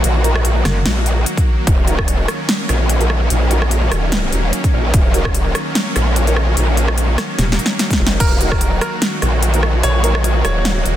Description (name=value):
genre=heavy wobble dubstep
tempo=147 BPM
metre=4/4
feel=swing 55% on 16ths, half-time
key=Eb minor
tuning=A4 = 440 Hz
part: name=supersaw pad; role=sustained chords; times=0.0-11.0 s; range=Eb3 to Gb4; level=-22 LUFS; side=equal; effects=sidechain pumping
part: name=growl bass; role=bass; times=0.0-11.0 s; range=Eb1 to Bb1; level=-16 LUFS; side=equal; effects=chorus, overdrive
part: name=big-room dance drum kit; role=drums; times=0.0-10.9 s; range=crash cymbal, hi-hat, rim click, snare drum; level=-20 LUFS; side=equal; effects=overdrive, studio reverb
part: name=dark brass ensemble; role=stabs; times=0.2-10.1 s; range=Eb4 to Bb4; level=-27 LUFS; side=right 2 dB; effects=none
part: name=metallic wobble bass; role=bass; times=0.7-0.8, 7.4-7.6 s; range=Eb1 to Gb1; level=-17 LUFS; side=equal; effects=chorus, overdrive
part: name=electronic kick drum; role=drums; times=1.4-2.1, 4.6-5.3, 7.9-8.6 s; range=none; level=-15 LUFS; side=equal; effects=overdrive, studio reverb
part: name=bright baby grand piano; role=melody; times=8.2-10.8 s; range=Bb4 to Db5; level=-23 LUFS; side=right 1 dB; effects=digital delay
room=light reverb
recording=dense, heavily limited modern master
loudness=-13 LUFS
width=side -12 dB against mid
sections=0.0-11.0 A section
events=drum fill 7.4-8.2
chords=0.0 Ebm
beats=| 0.04 0.45 0.85 1.26 | 1.67 2.08 2.49 2.90 | 3.30 3.71 4.12 4.53 | 4.94 5.34 5.75 6.16 | 6.57 6.98 7.39 7.79 | 8.20 8.61 9.02 9.43 | 9.84 10.24 10.65